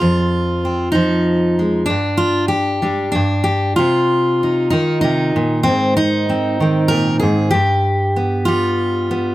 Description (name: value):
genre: folk, solo fingerstyle acoustic guitar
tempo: 96 BPM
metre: 3/4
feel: straight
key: C minor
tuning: A4 = 441 Hz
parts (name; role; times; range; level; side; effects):
- fingerpicked steel-string acoustic guitar; solo; 0.0-9.3 s; F2 to Bb4; -14 LUFS; equal; none
room: little or no reverb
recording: close, detailed microphones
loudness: -14 LUFS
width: side -16 dB against mid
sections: 0.0-9.3 A section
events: none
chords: 0.0 Fm; 1.9 G5; 3.2 N.C.; 3.8 Cm7; 5.7 Abadd9; 7.5 G